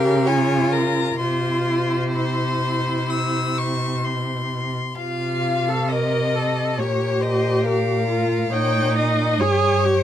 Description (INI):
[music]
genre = classical, slow romantic movement for string quartet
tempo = 63-70 BPM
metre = 4/4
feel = rubato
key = unclear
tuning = A4 = 436 Hz
[part]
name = rich violin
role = melody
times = 0.0-10.0 s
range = Bb4 to E6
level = -25 LUFS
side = left 7 dB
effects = none
[part]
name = rich violin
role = second line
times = 0.0-10.0 s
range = Bb4 to G5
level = -28 LUFS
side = left 2 dB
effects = none
[part]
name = warm viola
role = accompaniment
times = 0.0-10.0 s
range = Eb4 to Bb4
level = -23 LUFS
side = right 1 dB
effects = none
[part]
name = warm cello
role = bass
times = 0.0-10.0 s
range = G2 to Db3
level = -23 LUFS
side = right 2 dB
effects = none
[sound]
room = little or no reverb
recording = close, detailed microphones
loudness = -19 LUFS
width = side -10 dB against mid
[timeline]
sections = 0.0-10.0 A section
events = none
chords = 0.0 Bbm/Db; 1.2 C; 5.0 F5/C; 6.8 Bbm; 8.5 Eb7/Bb